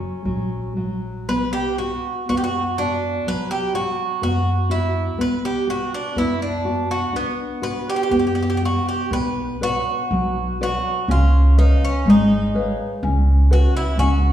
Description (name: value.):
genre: fado-style ballad.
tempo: 62 BPM.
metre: 2/4.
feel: rubato.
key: B harmonic minor.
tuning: A4 = 438 Hz.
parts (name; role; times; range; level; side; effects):
Irish bouzouki; melody; 0.0-14.3 s; B3 to B4; -23 LUFS; right 2 dB; none.
nylon-string guitar; accompaniment; 0.0-14.3 s; F#3 to F#5; -23 LUFS; left 1 dB; none.
upright bass; bass; 0.3-14.3 s; G#1 to F#2; -20 LUFS; equal; none.
room: wet recital hall reverb, RT60 1.5 s.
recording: recorded in a church or concert hall.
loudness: -18 LUFS.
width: side -11 dB against mid.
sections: 0.0-9.1 A section; 9.1-14.3 B section.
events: none.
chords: 0.0 F#; 1.3 Bm; 9.1 Bmadd9; 11.1 C#7; 13.0 F#sus4/C#.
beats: 0.25 | 1.28 2.29 | 3.27 4.23 | 5.19 6.17 | 7.13 8.11 | 9.11 10.11 | 11.09 12.06 | 13.03 13.98.